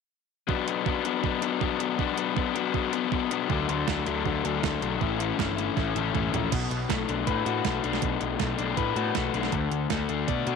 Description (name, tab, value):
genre	indie rock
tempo	159 BPM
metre	4/4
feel	straight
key	B minor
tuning	A4 = 441 Hz
part	crunchy overdriven guitar	riff	0.5-10.6 s	A2 to D5	-26 LUFS	left 11 dB	none
part	crisp 8-bit digital drum machine	drums	0.5-10.6 s	crash cymbal, hi-hat, kick drum, snare drum, toms	-31 LUFS	right 7 dB	overdrive
part	fuzz picked electric bass	bass	3.5-10.6 s	G1 to B2	-32 LUFS	right 2 dB	overdrive
room	digital ambience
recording	1960s-style stereo with parts hard left and right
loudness	-25 LUFS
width	side -5 dB against mid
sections	0.5-6.5 A section; 6.5-10.6 B section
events	drum fill 5.8-6.5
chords	0.5 Bm; 3.5 D; 5.0 A; 6.5 Bm7; 9.5 D5